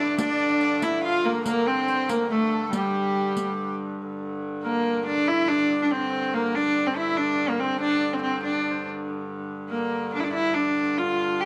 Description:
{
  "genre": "medieval dance",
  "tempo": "94 BPM (dotted quarters)",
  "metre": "6/8",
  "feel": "straight",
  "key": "G dorian",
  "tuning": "A4 = 441 Hz",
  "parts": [
    { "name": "rich viola da gamba", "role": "melody", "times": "0.0-11.5 s", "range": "G3 to G4", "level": "-26 LUFS", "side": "equal", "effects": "none" },
    { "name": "dark fiddle", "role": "second line", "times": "0.0-3.8 s", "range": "G4 to F5", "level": "-35 LUFS", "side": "equal", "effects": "none" },
    { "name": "melodica", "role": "second line", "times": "0.0-11.5 s", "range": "G4 to G5", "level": "-34 LUFS", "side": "equal", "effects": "none" },
    { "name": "warm hurdy-gurdy", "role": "drone", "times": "0.0-11.5 s", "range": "G2 to D3", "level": "-35 LUFS", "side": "equal", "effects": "none" },
    { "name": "riq", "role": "percussion", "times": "0.2-3.6 s", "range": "none", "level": "-34 LUFS", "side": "equal", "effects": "none" }
  ],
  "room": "moderate echo chamber reverb, RT60 1.4 s, small room ambience",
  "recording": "none",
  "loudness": "-25 LUFS",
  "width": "mono",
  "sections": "0.0-4.0 A section; 4.0-11.5 B section",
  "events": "none",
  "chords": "none"
}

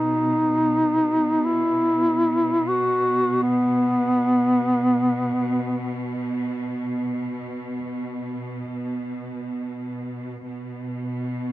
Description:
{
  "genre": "caucasian folk, Caucasian lament",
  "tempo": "free time",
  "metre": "none",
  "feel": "none",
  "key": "B major",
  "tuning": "A4 = 440 Hz",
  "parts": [
    { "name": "mellow duduk", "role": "melody", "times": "0.0-6.3 s", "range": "B3 to F#4", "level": "-19 LUFS", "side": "equal", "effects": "none" },
    { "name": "bright studio cello section", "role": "drone", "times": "0.0-11.5 s", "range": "B2", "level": "-27 LUFS", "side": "right 1 dB", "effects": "none" }
  ],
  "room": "light reverb",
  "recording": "dry, close 1970s-style studio recording",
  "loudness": "-21 LUFS",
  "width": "side -16 dB against mid",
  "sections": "0.0-10.5 A section; 10.5-11.5 A section",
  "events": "none",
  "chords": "none"
}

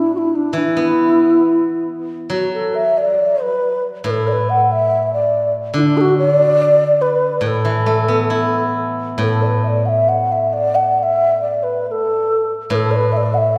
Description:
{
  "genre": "chinese traditional, Chinese chamber ensemble",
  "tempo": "70 BPM",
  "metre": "2/4",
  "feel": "rubato",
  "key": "A zhi mode",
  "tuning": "A4 = 441 Hz",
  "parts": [
    { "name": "mellow low xiao", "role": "melody", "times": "0.0-13.6 s", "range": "D4 to F#5", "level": "-18 LUFS", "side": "equal", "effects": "none" },
    { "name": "steel-string zither", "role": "accompaniment", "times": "0.5-13.6 s", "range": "A2 to E4", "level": "-23 LUFS", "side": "equal", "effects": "none" }
  ],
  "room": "wet concert hall reverb, RT60 2.3 s",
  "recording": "heard from further back in the room",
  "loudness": "-16 LUFS",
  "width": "mono",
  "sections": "0.0-9.2 A section; 9.2-13.6 B section",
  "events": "none",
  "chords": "none"
}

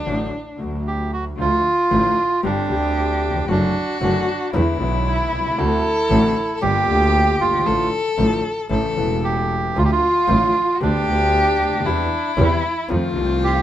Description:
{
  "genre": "tango",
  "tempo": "115 BPM",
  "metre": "4/4",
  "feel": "rubato",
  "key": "D minor",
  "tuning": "A4 = 442 Hz",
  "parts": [
    { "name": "warm cello", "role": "second line", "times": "0.0-13.6 s", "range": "D4 to A4", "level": "-23 LUFS", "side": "left 3 dB", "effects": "none" },
    { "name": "warm concert grand piano", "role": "accompaniment", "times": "0.0-13.6 s", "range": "E1 to G4", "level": "-24 LUFS", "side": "left 3 dB", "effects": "none" },
    { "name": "clear double bass", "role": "bass", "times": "0.0-13.6 s", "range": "E1 to F2", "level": "-22 LUFS", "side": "right 1 dB", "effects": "none" },
    { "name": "bandoneon", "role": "melody", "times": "0.9-13.6 s", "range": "D4 to G4", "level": "-20 LUFS", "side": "right 3 dB", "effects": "none" }
  ],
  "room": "moderate studio reverb, RT60 0.8 s",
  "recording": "minimal, uncompressed stereo recording",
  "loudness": "-17 LUFS",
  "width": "side -12 dB against mid",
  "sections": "0.0-1.4 A section; 1.4-13.6 B section",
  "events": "cello solo 0.0-1.4",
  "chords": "0.0 D; 1.4 Dm; 2.4 Gsus4; 3.5 D/F#; 4.5 E7; 5.6 D7; 6.6 Gm7; 7.7 Dm/A; 8.7 A; 9.8 Dm; 10.8 G/D; 11.9 C/E; 12.9 F7"
}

